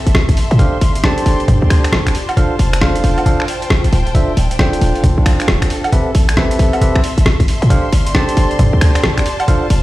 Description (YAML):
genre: UK garage, two-step garage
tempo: 135 BPM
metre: 4/4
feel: swing 63% on 16ths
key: unclear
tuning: A4 = 439 Hz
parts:
  - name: warm studio string section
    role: texture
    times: 0.0-9.8 s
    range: D4 to C6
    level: -24 LUFS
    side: left 1 dB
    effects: sidechain pumping
  - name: short 808-style bass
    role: bass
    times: 0.1-9.8 s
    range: D1 to A2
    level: -14 LUFS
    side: equal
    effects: sidechain pumping
  - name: boom bap sampler-style drum kit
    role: drums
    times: 0.1-9.8 s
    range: finger snaps, hi-hat, rim click, woodblock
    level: -19 LUFS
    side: equal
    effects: overdrive, small room reverb
  - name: electronic kick drum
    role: drums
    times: 0.1-9.6 s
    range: none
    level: -15 LUFS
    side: equal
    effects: overdrive, small room reverb
  - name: bell-like tine electric piano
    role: stabs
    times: 0.6-9.7 s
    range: C4 to A5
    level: -20 LUFS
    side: equal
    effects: tape echo
room: digital ambience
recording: played on a big sound system in a bare room, stone room reverb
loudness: -11 LUFS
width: side -17 dB against mid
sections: 0.0-9.8 A section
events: none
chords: 0.0 Am7; 0.6 Gsus4; 2.1 F6; 4.1 Dm7; 5.9 Am9; 7.7 Gsus4; 9.3 F6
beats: 0.15 | 0.59 1.04 1.48 1.93 | 2.37 2.81 3.26 3.70 | 4.15 4.59 5.04 5.48 | 5.93 6.37 6.82 7.26 | 7.70 8.15 8.59 9.04 | 9.48